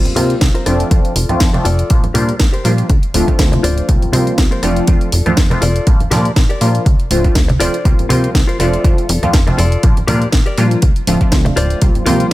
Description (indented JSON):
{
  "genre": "filtered disco house",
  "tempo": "121 BPM",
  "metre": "4/4",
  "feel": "swing 55% on 16ths",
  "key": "F major",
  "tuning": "A4 = 437 Hz",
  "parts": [
    { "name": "funky polysynth comp", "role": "accompaniment", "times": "0.0-12.3 s", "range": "F3 to F4", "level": "-18 LUFS", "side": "equal", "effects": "chorus, phaser, sidechain pumping, low-pass filter" },
    { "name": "house drum kit", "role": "drums", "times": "0.1-12.3 s", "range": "hi-hat, rim click, snare drum", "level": "-21 LUFS", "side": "equal", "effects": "sidechain pumping on hats, small room ambience, sidechain pumping on cymbals" },
    { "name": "congas and tambourine", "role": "percussion", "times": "0.1-12.3 s", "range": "none", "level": "-21 LUFS", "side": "right 2 dB", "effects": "sidechain pumping on perc, low-pass filter on perc" },
    { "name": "direct-recorded clean electric guitar", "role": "riff", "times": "0.2-12.3 s", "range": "F4 to D5", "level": "-22 LUFS", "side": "left 3 dB", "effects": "sidechain pumping, low-pass filter" },
    { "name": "plucky analog bass", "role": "bass", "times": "0.2-12.2 s", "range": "D1 to C3", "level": "-16 LUFS", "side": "equal", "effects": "sidechain pumping, low-pass filter" },
    { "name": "electronic kick drum", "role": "drums", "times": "0.4-11.9 s", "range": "none", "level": "-12 LUFS", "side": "equal", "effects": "small room ambience" }
  ],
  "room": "little or no reverb",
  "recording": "none",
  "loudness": "-11 LUFS",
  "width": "side -16 dB against mid",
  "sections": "0.0-12.3 A section",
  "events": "filter sweep 0.0-12.3",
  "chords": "0.0 C7sus4; 0.7 F6; 1.9 Bb6; 2.9 Dm7; 3.9 C7sus4; 4.6 F6; 5.9 Bb6; 6.9 Dm7; 7.9 C7sus4; 8.6 F6; 9.8 Bb6; 10.8 Dm7; 11.8 C7sus4"
}